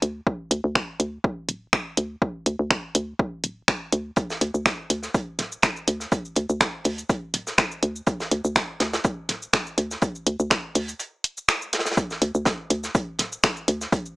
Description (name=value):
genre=minimal techno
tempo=123 BPM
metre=4/4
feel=swing 54% on 16ths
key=unclear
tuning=A4 = 440 Hz
part: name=hollow knocking FM bass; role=bass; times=0.0-13.9 s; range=D1 to D2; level=-25 LUFS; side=equal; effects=sidechain pumping
part: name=punchy analog drum machine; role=drums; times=0.0-14.1 s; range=finger snaps, hi-hat, shaker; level=-22 LUFS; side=equal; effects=overdrive
part: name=electronic kick drum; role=drums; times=0.3-14.0 s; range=none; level=-24 LUFS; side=equal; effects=overdrive
part: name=modern studio drum kit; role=drums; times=4.2-14.1 s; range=hi-hat, snare drum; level=-30 LUFS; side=right 1 dB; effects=high-pass filter on hats, high-pass filter on snare, high-pass filter on room
room=light reverb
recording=small speaker sound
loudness=-22 LUFS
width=side -21 dB against mid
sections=0.0-12.0 A section; 12.0-14.2 B section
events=drop 12.0-14.2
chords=none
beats=| 0.27 0.75 1.24 1.73 | 2.22 2.71 3.19 3.68 | 4.17 4.66 5.14 5.63 | 6.12 6.61 7.10 7.58 | 8.07 8.56 9.05 9.54 | 10.02 10.51 11.00 11.49 | 11.97 12.46 12.95 13.44 | 13.93